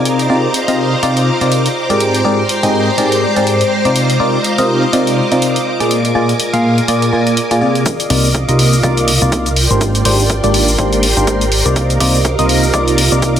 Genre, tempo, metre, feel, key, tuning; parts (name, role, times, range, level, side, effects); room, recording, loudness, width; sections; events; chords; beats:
piano house; 123 BPM; 4/4; swing 57% on 16ths; C minor; A4 = 439 Hz
string machine, violins; sustained chords; 0.0-13.4 s; Bb4 to D6; -20 LUFS; equal; ensemble chorus, sidechain pumping
barking FM electric piano; riff; 0.0-13.4 s; Ab2 to F5; -14 LUFS; equal; phaser, sidechain pumping, low-pass filter, digital delay
ethereal airy pad; texture; 0.0-13.4 s; Ab3 to Bb5; -21 LUFS; equal; ensemble chorus, built-in reverb, phaser, sidechain pumping
electronic hi-hat and shaker; drums; 0.1-13.4 s; -19 LUFS; left 1 dB
electronic kick drum; drums; 7.9-13.3 s; -21 LUFS; equal; high-pass filter on kick
fat analog bass; bass; 8.1-13.4 s; Ab1 to C2; -15 LUFS; equal; sidechain pumping
moderate plate reverb, RT60 1.7 s, digital ambience; dense, heavily limited modern master; -11 LUFS; side -9 dB against mid
0.0-7.9 A section; 7.9-13.4 B section
filter sweep on FM electric piano 0.0-7.9; build-up 7.9-13.4
0.1 Cm11; 1.8 Abmaj9#11; 4.0 Cm11; 5.9 Bb7; 7.9 Cm11; 9.6 Abmaj9#11; 11.8 Cm11
| 0.05 0.54 1.03 1.52 | 2.00 2.49 2.98 3.47 | 3.96 4.44 4.93 5.42 | 5.91 6.39 6.88 7.37 | 7.86 8.35 8.83 9.32 | 9.81 10.30 10.79 11.27 | 11.76 12.25 12.74 13.22